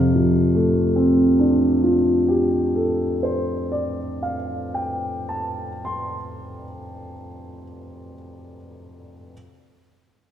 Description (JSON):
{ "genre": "classical, impressionist solo piano", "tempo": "31 BPM", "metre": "4/4", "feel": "rubato", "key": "F major", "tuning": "A4 = 441 Hz", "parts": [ { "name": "warm grand piano", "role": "solo", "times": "0.0-9.3 s", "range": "F2 to C6", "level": "-20 LUFS", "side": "equal", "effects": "none" } ], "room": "wet scoring stage reverb, RT60 1.9 s", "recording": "recorded in a church or concert hall", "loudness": "-18 LUFS", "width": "side -10 dB against mid", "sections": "0.0-7.1 A section", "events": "none", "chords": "0.0 F69" }